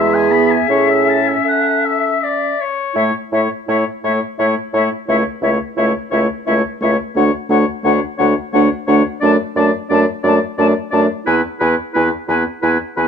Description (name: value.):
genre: classical, slow romantic movement for wind quintet.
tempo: 78-88 BPM.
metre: 3/4.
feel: rubato.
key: A major.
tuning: A4 = 440 Hz.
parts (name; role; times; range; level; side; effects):
silver concert flute; melody; 0.0-13.1 s; E5 to A5; -20 LUFS; left 8 dB; none.
warm oboe; second line; 0.0-13.1 s; B4 to B5; -20 LUFS; left 4 dB; none.
clear clarinet; accompaniment; 0.0-13.1 s; G#3 to E4; -22 LUFS; right 7 dB; none.
warm French horn; accompaniment; 0.0-13.1 s; A3 to A4; -21 LUFS; equal; none.
mellow bassoon; bass; 0.0-13.1 s; C#2 to A2; -18 LUFS; right 2 dB; none.
room: light reverb.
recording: dark, warm production.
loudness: -13 LUFS.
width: side -7 dB against mid.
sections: 0.0-3.0 A section; 3.0-13.1 B section.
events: none.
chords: 0.0 E; 0.7 A; 5.1 A/C#; 7.2 Dmaj7(no3); 9.2 D/F#; 11.3 E.